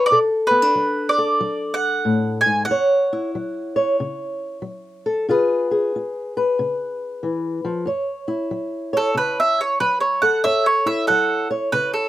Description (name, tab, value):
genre	acoustic country blues, solo or duo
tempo	93 BPM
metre	4/4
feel	swing 64% on 8ths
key	F# minor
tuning	A4 = 440 Hz
part	mandolin	melody	0.0-12.1 s	A4 to G#5	-18 LUFS	right 2 dB	none
part	fingerpicked old ladder-braced acoustic guitar	accompaniment	0.0-12.1 s	F#2 to C#5	-21 LUFS	left 1 dB	none
room	light reverb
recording	rough home demo mix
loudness	-18 LUFS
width	side -14 dB against mid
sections	0.0-7.9 A section; 7.9-12.1 B section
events	mandolin solo 7.9-12.1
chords	0.1 Bm7; 2.7 F#7(no3); 5.3 C#7#9; 7.9 F#m7